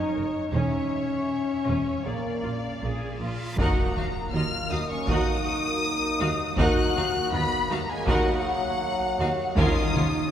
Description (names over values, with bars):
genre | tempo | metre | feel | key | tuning
cinematic, epic orchestral film score | 80 BPM | 4/4 | straight | Eb minor from 3.6 s | A4 = 438 Hz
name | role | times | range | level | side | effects
warm symphonic violin section | melody | 0.0-10.3 s | C#5 to Gb6 | -31 LUFS | left 3 dB | none
rich symphonic violin section | second line | 0.0-10.0 s | F4 to Gb5 | -34 LUFS | left 1 dB | none
warm symphonic viola section | accompaniment | 0.0-10.0 s | Gb3 to A#4 | -32 LUFS | right 2 dB | none
mellow French horn section | sustained chords | 0.0-10.3 s | Gb3 to Gb4 | -30 LUFS | left 1 dB | none
clear symphonic double bass section | bass | 0.2-10.0 s | E1 to Eb2 | -33 LUFS | right 2 dB | none
dark symphonic cello section | bass | 0.2-10.0 s | Eb2 to A#2 | -32 LUFS | right 1 dB | none
reverse cymbal and impact | sound effects | 3.2-6.6 s | none | -38 LUFS | equal | none
warm trombone section | sustained chords | 3.6-10.3 s | F3 to Db4 | -35 LUFS | right 1 dB | none
solo taiko drums | drums | 3.6-10.3 s | none | -29 LUFS | equal | none
timpani | percussion | 9.6-10.3 s | Eb3 | -32 LUFS | left 2 dB | none
room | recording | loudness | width
wet church reverb, RT60 3.4 s | recorded in a church or concert hall | -23 LUFS | side -10 dB against mid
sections
0.0-3.6 A section; 3.6-10.3 B section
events
reverse cymbal 3.2-3.6; impact 3.6-6.6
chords
0.0 F#; 0.5 C#m; 2.1 A#7; 3.6 Ebm; 9.6 Bbm/Eb